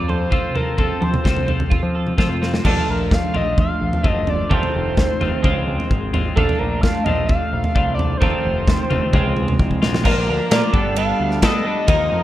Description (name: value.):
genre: indie rock.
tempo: 129 BPM.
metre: 4/4.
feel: straight.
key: unclear.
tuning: A4 = 440 Hz.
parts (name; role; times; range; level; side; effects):
overdriven synth lead; melody; 0.0-12.2 s; A4 to F5; -24 LUFS; equal; distortion, digital delay.
twelve-string electric guitar; riff; 0.0-12.2 s; Eb3 to A4; -26 LUFS; left 5 dB; spring reverb.
twelve-string electric guitar; riff; 0.0-12.2 s; Eb3 to A4; -25 LUFS; right 6 dB; lush chorus, digital delay.
growling picked electric bass; bass; 0.0-12.2 s; F1 to F3; -24 LUFS; equal; overdrive.
big rock drum kit; drums; 0.1-12.0 s; crash cymbal, kick drum, ride cymbal, snare drum, toms; -19 LUFS; equal; none.
tonewheel organ; sustained chords; 10.0-12.2 s; A4 to Eb6; -35 LUFS; equal; none.
room: small room ambience.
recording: rough home demo mix.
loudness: -16 LUFS.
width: side -14 dB against mid.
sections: 0.0-2.6 A section; 2.6-10.1 B section; 10.1-12.2 C section.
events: drum fill 2.4, 9.6-10.1.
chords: 0.0 F; 2.6 Bbmaj7; 4.5 F7; 5.4 Dbmaj7; 6.4 Bbmaj7; 8.2 F7; 9.1 Dbmaj7; 10.1 Bb; 10.7 Gadd9.